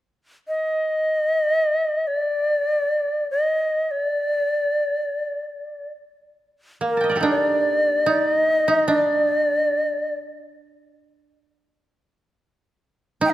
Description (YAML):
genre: japanese traditional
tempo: free time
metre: none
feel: none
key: D miyako bushi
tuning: A4 = 443 Hz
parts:
  - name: bright reedy shakuhachi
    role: melody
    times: 0.5-13.3 s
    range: Bb4 to G5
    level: -20 LUFS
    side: equal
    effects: none
  - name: koto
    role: second line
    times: 6.8-13.3 s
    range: Bb3 to A5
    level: -22 LUFS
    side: right 3 dB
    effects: none
room: moderate concert hall reverb, RT60 1.8 s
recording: none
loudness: -19 LUFS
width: side -14 dB against mid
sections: 0.0-7.3 A section; 7.3-13.3 B section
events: none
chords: none